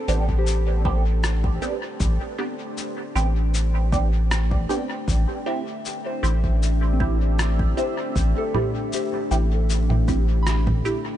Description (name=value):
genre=ambient dub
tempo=78 BPM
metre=4/4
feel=swing 53% on 16ths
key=unclear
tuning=A4 = 440 Hz
part: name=deep dark ambient pad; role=sustained chords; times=0.0-11.2 s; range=A3 to E5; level=-32 LUFS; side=left 1 dB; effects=chorus, built-in reverb
part: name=soft synth bell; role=arpeggios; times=0.0-11.2 s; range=C4 to B5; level=-32 LUFS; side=left 4 dB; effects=chorus, dub echo
part: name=filtered dub chord stab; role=stabs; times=0.1-11.0 s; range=B3 to G4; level=-29 LUFS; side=right 3 dB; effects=phaser, ensemble chorus, dub echo
part: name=round analog bass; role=bass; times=0.1-10.8 s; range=A1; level=-20 LUFS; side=equal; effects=none
part: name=electronic shaker, rim click and congas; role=drums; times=0.1-11.0 s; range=none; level=-30 LUFS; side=equal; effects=overdrive, dub echo
part: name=electronic kick drum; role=drums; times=0.3-10.8 s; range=none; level=-26 LUFS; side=equal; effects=none
room=digital ambience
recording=nothing above 10.4 kHz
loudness=-20 LUFS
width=side -12 dB against mid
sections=0.0-11.2 A section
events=fade-in on ambient pad 0.0-11.2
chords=0.0 Am11